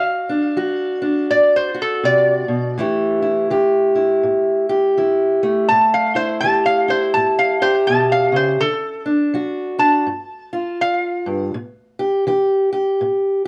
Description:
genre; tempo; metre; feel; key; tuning
acoustic country blues, solo or duo; 82 BPM; 4/4; swing 61% on 8ths; unclear; A4 = 440 Hz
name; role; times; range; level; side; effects
lap resonator guitar; melody; 0.0-11.5 s; A4 to A5; -19 LUFS; equal; slapback echo
fingerpicked steel-string acoustic guitar; accompaniment; 0.0-13.5 s; G2 to G4; -20 LUFS; equal; none
room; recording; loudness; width
moderate studio ambience, RT60 0.5 s; worn, warbling old tape, cassette tape, warbly pitch drift; -18 LUFS; mono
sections
0.0-13.5 A section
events
resonator guitar played with a steel bar solo 0.0-13.5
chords
0.0 D7; 2.8 A7(no3); 8.6 D; 10.1 Fadd9/G; 11.5 A7(no3)

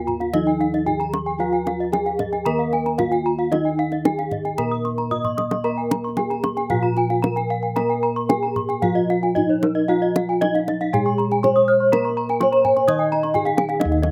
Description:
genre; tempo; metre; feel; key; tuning
Balinese gamelan; 113-133 BPM; 4/4; straight; Eb slendro; A4 = 440 Hz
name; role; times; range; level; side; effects
gamelan-type bronze metallophone; melody; 0.0-14.1 s; Eb4 to Eb5; -24 LUFS; equal; none
gamelan-type bronze metallophone; accompaniment; 0.0-14.1 s; Eb3 to Eb4; -31 LUFS; equal; none
gamelan-type bronze metallophone; arpeggios; 0.0-14.1 s; Db5-45c to Eb6; -28 LUFS; equal; none
gamelan-type bossed gongs; bass; 0.0-14.1 s; Eb2 to Bb4+25c; -30 LUFS; equal; none
gamelan-type bronze metallophone; arpeggios; 0.1-14.0 s; Bb4+25c to F6+30c; -29 LUFS; equal; slapback echo
kendang; percussion; 0.1-14.1 s; none; -29 LUFS; equal; none
room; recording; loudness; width
light reverb; recorded outdoors, with no room sound; -21 LUFS; mono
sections
0.0-13.8 A section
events
drum fill 5.1-5.6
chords
none

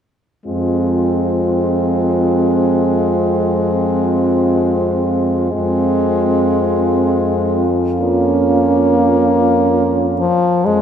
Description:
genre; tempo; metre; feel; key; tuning
classical, lyrical piece for horn quartet; 62-75 BPM; 3/4; rubato; F minor; A4 = 444 Hz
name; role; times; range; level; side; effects
warm French horn; melody; 0.5-10.8 s; F4 to C5; -22 LUFS; left 5 dB; none
warm French horn; second line; 0.5-10.8 s; C4 to F4; -18 LUFS; right 5 dB; none
clear French horn; accompaniment; 0.5-10.8 s; F3 to Bb3; -18 LUFS; left 3 dB; none
mellow French horn; bass; 0.5-10.8 s; F2; -19 LUFS; right 2 dB; none
room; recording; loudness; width
wet church reverb, RT60 3.6 s; none; -13 LUFS; side -8 dB against mid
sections
0.5-10.6 A section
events
none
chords
0.5 Fm; 8.0 Bbm/F

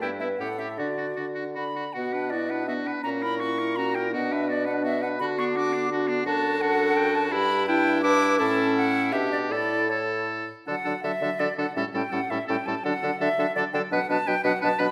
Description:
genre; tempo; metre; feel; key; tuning
quick classical-period movement for wind quintet; 151-173 BPM; 3/4; rubato; B minor, D major from 6.3 s; A4 = 440 Hz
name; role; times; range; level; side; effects
silver concert flute; melody; 0.0-14.9 s; C#5 to D6; -31 LUFS; equal; none
bright oboe; second line; 0.0-14.9 s; D4 to B4; -33 LUFS; equal; none
mellow French horn; accompaniment; 0.0-14.9 s; F#3 to B4; -32 LUFS; equal; none
mellow clarinet; accompaniment; 0.0-14.9 s; B3 to B4; -33 LUFS; equal; none
mellow bassoon; bass; 0.0-14.9 s; F#2 to D3; -33 LUFS; equal; none
room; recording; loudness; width
wet recital hall reverb, RT60 1.2 s; none; -25 LUFS; mono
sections
0.0-1.9 A section; 1.9-10.7 B section; 10.7-14.9 C section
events
none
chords
0.0 Em/G; 0.4 A7; 0.8 D; 1.9 Bm; 3.0 F#7/A#; 4.1 Bm; 5.2 Bm/D; 6.3 D/F#; 7.3 Em7/G; 8.4 A; 9.1 G/B; 9.5 A; 10.7 D; 11.8 A7; 12.8 D; 13.9 Bm

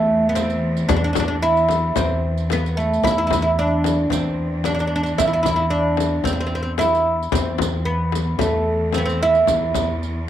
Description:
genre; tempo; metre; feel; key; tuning
Arabic maqam ensemble; 112 BPM; 4/4; straight; E maqam bayati; A4 = 438 Hz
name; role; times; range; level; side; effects
oud; melody; 0.0-10.3 s; A3 to E4; -19 LUFS; right 1 dB; none
upright bass; bass; 0.0-10.3 s; E2; -24 LUFS; equal; none
bright symphonic cello section; drone; 0.0-10.3 s; E2; -29 LUFS; equal; none
frame drum; percussion; 0.4-9.9 s; none; -26 LUFS; left 9 dB; none
riq; percussion; 0.4-10.1 s; none; -32 LUFS; right 12 dB; none
room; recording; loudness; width
moderate spring reverb, RT60 1.6 s, studio reverb; 1960s-style stereo with parts hard left and right; -17 LUFS; side -11 dB against mid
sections
0.0-10.3 A section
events
none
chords
none

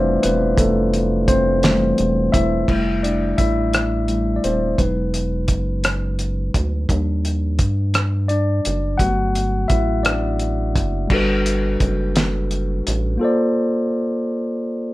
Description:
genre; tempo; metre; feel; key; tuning
slow six-eight R&B; 57 BPM (dotted quarters); 6/8; straight; unclear; A4 = 444 Hz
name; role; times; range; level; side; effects
mellow tine electric piano; accompaniment; 0.0-14.9 s; E3 to F#5; -20 LUFS; left 1 dB; none
rubbery square bass; bass; 0.0-13.2 s; Eb1 to G2; -22 LUFS; right 1 dB; none
cloth-damped thuddy drum kit; drums; 0.2-13.0 s; crash cymbal, hi-hat, kick drum, rim click, snare drum; -20 LUFS; equal; none
room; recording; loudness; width
light reverb; none; -17 LUFS; side -17 dB against mid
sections
0.0-2.7 A section; 2.7-11.1 B section; 11.1-13.2 C section; 13.2-14.9 A section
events
tine electric piano solo 0.0-2.7, 2.7-11.1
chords
0.0 Fmaj9; 4.8 Emaj9; 6.9 Ebmaj9; 9.0 Gmaj9; 13.2 Bbmaj9

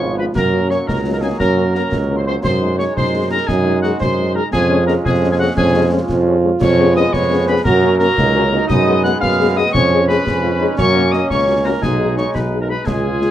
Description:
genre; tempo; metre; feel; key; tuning
military-style march for wind band; 115 BPM (dotted quarters); 6/8; straight; Db major, F# major from 6.6 s; A4 = 440 Hz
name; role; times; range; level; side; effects
mellow cornet; melody; 0.0-13.3 s; Gb4 to F#5; -21 LUFS; right 1 dB; none
piccolo; second line; 0.0-13.3 s; Gb5 to F#6; -23 LUFS; left 4 dB; none
warm euphonium; second line; 0.0-13.3 s; B3 to G#4; -22 LUFS; right 3 dB; none
mellow French horn section; accompaniment; 0.0-13.3 s; Ab3 to Ab4; -22 LUFS; left 4 dB; none
bright trombone section; sustained chords; 0.0-13.3 s; F3 to E#4; -25 LUFS; equal; none
clear tuba; bass; 0.0-13.3 s; Ab1 to F#2; -17 LUFS; right 2 dB; none
concert snare drum, clash cymbals and concert bass drum; drums; 0.4-13.3 s; none; -23 LUFS; left 1 dB; none
room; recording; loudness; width
moderate studio reverb, RT60 0.7 s; dark, warm production; -13 LUFS; side -11 dB against mid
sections
0.0-13.3 A section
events
none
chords
0.4 Gb; 2.4 Ab7/Gb; 4.5 Db/F; 6.6 C#7/E#; 7.7 F#; 8.7 G#m7/F#; 9.7 C#7/E#; 10.8 F#; 11.8 G#m/B

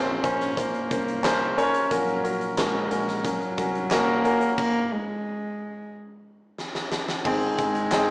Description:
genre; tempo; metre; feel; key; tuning
piano-driven pop; 90 BPM; 4/4; straight; unclear; A4 = 441 Hz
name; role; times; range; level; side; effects
warm cello; melody; 0.0-8.1 s; Gb3 to Db4; -28 LUFS; equal; none
clear concert grand piano; accompaniment; 0.0-8.1 s; Ab2 to Db5; -24 LUFS; equal; none
fingered electric bass; bass; 0.0-8.1 s; Ab1 to C2; -39 LUFS; equal; none
huge arena drum kit; drums; 0.2-8.1 s; crash cymbal, handclaps, hi-hat, kick drum, snare drum; -29 LUFS; equal; none
room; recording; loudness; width
moderate large studio reverb, RT60 0.9 s; band playing live in one room, small speaker sound; -22 LUFS; side -23 dB against mid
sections
0.0-7.3 A section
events
stop 4.6-7.3; drum fill 6.6-7.3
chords
0.0 Bbmadd9; 1.9 Gb/Bb; 4.6 N.C.; 7.3 Ab

